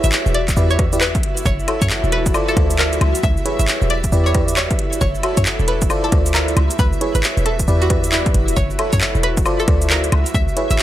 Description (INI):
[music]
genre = UK garage, two-step garage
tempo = 135 BPM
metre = 4/4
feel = swing 62% on 16ths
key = unclear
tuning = A4 = 440 Hz
[part]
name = string-like resonator pluck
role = melody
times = 0.0-10.8 s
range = E4 to E5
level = -24 LUFS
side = equal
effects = chorus, phaser, digital delay
[part]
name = airy breathy pad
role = sustained chords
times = 0.0-10.8 s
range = E5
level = -30 LUFS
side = right 1 dB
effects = chorus, sidechain pumping
[part]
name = FM electric piano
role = stabs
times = 0.0-10.8 s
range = E4 to E5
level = -24 LUFS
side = right 1 dB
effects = chorus, digital delay
[part]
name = short 808-style bass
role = bass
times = 0.0-10.8 s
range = D1 to F#2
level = -18 LUFS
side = equal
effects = none
[part]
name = house drum kit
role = drums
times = 0.0-10.8 s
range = cabasa, handclaps, hi-hat, rim click, woodblock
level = -22 LUFS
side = equal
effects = overdrive
[part]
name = granular cloud pad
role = texture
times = 0.0-10.8 s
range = E4 to E5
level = -26 LUFS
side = left 1 dB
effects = built-in reverb, sidechain pumping
[part]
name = electronic kick drum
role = drums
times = 0.5-10.5 s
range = none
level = -20 LUFS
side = equal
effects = overdrive
[sound]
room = little or no reverb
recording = none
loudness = -14 LUFS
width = side -13 dB against mid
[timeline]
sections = 0.0-10.8 A section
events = none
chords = 0.3 Em7; 1.5 F#m7; 2.3 Dm7; 3.0 C#m7; 3.9 Em7; 5.0 F#m7; 5.9 Dm7; 6.6 C#m7; 7.5 Em7; 8.6 F#m7; 9.5 Dm7; 10.1 C#m7